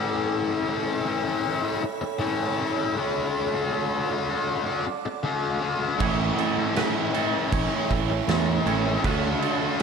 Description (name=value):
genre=rock, shoegaze and dream pop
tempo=79 BPM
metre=4/4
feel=straight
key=A major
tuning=A4 = 440 Hz
part: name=icy glass pad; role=sustained chords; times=0.0-9.8 s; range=D4 to D6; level=-33 LUFS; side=right 7 dB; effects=chorus, built-in reverb
part: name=biting overdriven guitar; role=riff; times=0.0-9.8 s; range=A2 to F#4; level=-25 LUFS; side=left 4 dB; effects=lush chorus
part: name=twangy electric guitar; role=arpeggios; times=6.0-9.8 s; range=A4 to C#5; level=-33 LUFS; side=right 16 dB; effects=lush chorus, analog delay
part: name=crunchy overdriven guitar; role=riff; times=6.0-9.8 s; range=A2 to F#4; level=-30 LUFS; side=right 14 dB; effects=reverse reverb
part: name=tight distorted guitar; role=riff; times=6.0-9.8 s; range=A2 to A4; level=-30 LUFS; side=right 3 dB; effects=distortion
part: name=growling fingered electric bass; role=bass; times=6.0-9.3 s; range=A1 to E2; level=-27 LUFS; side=right 2 dB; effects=overdrive
part: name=loose indie drum kit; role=drums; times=6.0-9.8 s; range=crash cymbal, kick drum, snare drum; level=-29 LUFS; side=right 2 dB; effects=none
room=moderate huge ambient reverb, RT60 4.2 s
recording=none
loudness=-23 LUFS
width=side -6 dB against mid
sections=0.0-9.8 A section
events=none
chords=0.0 Aadd9; 3.0 D; 6.0 Aadd9; 9.0 D